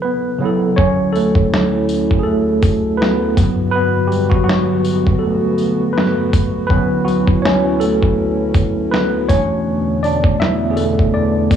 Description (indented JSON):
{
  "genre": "lo-fi hip hop",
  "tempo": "81 BPM",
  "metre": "4/4",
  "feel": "swing 60% on 16ths",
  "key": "D major",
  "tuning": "A4 = 440 Hz",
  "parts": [
    { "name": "tine electric piano", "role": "accompaniment", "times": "0.0-11.6 s", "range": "G2 to E5", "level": "-16 LUFS", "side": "right 1 dB", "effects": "overdrive, fast stereo tremolo, cassette tape, low-pass filter" },
    { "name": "dark analog pad", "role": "sustained chords", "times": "1.0-11.6 s", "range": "D2 to F#4", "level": "-22 LUFS", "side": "left 1 dB", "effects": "chorus, low-pass filter" },
    { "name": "lo-fi sampler-style drum kit", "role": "drums", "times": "0.8-11.6 s", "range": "kick drum, snare drum", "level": "-16 LUFS", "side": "equal", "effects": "overdrive, vintage 12-bit sampler grit" },
    { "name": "tambourine", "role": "percussion", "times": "1.2-11.6 s", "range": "none", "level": "-36 LUFS", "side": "left 6 dB", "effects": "none" }
  ],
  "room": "light reverb",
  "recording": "cassette tape, small room reverb",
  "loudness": "-13 LUFS",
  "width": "side -9 dB against mid",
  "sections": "0.8-11.6 A section",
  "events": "hi-hats muted 0.8-11.6; tine electric piano solo 0.8-11.6",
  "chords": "0.0 Esus24; 0.8 Dmaj9; 3.4 Gmaj7; 6.7 Dmaj9; 9.3 E13sus4",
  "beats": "0.04 | 0.78 1.52 2.26 3.00 | 3.74 4.48 5.22 5.96 | 6.70 7.45 8.19 8.93 | 9.67 10.41 11.15"
}